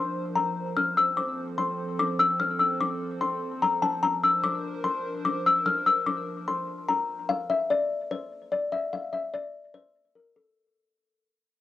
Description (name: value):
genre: hip hop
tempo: 147 BPM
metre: 4/4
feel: half-time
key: unclear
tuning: A4 = 441 Hz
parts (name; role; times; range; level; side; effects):
- kalimba; melody; 0.0-10.5 s; A4 to F6; -25 LUFS; left 3 dB; low-pass filter
- hollow soft pad; sustained chords; 0.0-7.3 s; F3 to C5; -34 LUFS; right 2 dB; chorus, cassette tape
room: light reverb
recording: home recording on cassette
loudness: -24 LUFS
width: side -13 dB against mid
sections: 0.0-7.3 A section; 7.3-10.6 B section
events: fade-out 7.3-10.6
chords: 0.0 Bbadd9/F; 0.8 F; 4.0 Bbadd9/F; 7.3 N.C.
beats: 0.35 | 0.76 1.17 1.58 1.99 | 2.40 2.80 3.21 3.62 | 4.03 4.44 4.84 5.25 | 5.66 6.07 6.48 6.88 | 7.29 7.70 8.11 8.52 | 8.93 9.33 9.74 10.15